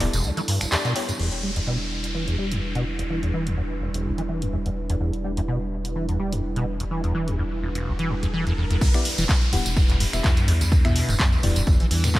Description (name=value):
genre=acid house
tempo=126 BPM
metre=4/4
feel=swing 55% on 16ths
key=E minor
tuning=A4 = 440 Hz
part: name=dark analog pad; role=sustained chords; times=0.0-12.2 s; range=G3 to B4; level=-32 LUFS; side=right 1 dB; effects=chorus, sidechain pumping
part: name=liquid acid bass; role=riff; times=0.0-12.2 s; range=E1 to G3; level=-26 LUFS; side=equal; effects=overdrive, ensemble chorus, sidechain pumping, tape echo
part: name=deep mellow chord stab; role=stabs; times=0.0-1.2, 8.9-11.6 s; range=B3 to F#5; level=-32 LUFS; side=left 3 dB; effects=chorus, tape echo
part: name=round analog bass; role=bass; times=0.0-12.2 s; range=D1 to E2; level=-28 LUFS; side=equal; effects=tube saturation, sidechain pumping
part: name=punchy analog drum machine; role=drums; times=0.0-12.2 s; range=crash cymbal, finger snaps, handclaps, hi-hat, toms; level=-28 LUFS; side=equal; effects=none
part: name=tambourine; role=percussion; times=0.1-1.2, 8.8-12.2 s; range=none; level=-32 LUFS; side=right 2 dB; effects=none
part: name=downlifter and riser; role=sound effects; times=1.2-12.2 s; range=none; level=-33 LUFS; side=equal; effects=none
part: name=electronic kick drum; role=drums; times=8.8-12.2 s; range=none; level=-20 LUFS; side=equal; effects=none
room=light reverb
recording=none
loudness=-21 LUFS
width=side -17 dB against mid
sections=0.0-1.2 A section; 1.2-8.8 B section; 8.8-12.2 A section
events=drop 0.0-1.2, 8.8-12.2; band accent 0.7; filter sweep on acid bass 1.2-8.8; riser 6.9-8.8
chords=0.0 Em7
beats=0.24 0.72 | 1.19 1.67 2.15 2.62 | 3.10 3.58 4.05 4.53 | 5.00 5.48 5.96 6.43 | 6.91 7.38 7.86 8.34 | 8.81 9.29 9.77 10.24 | 10.72 11.19 11.67 12.15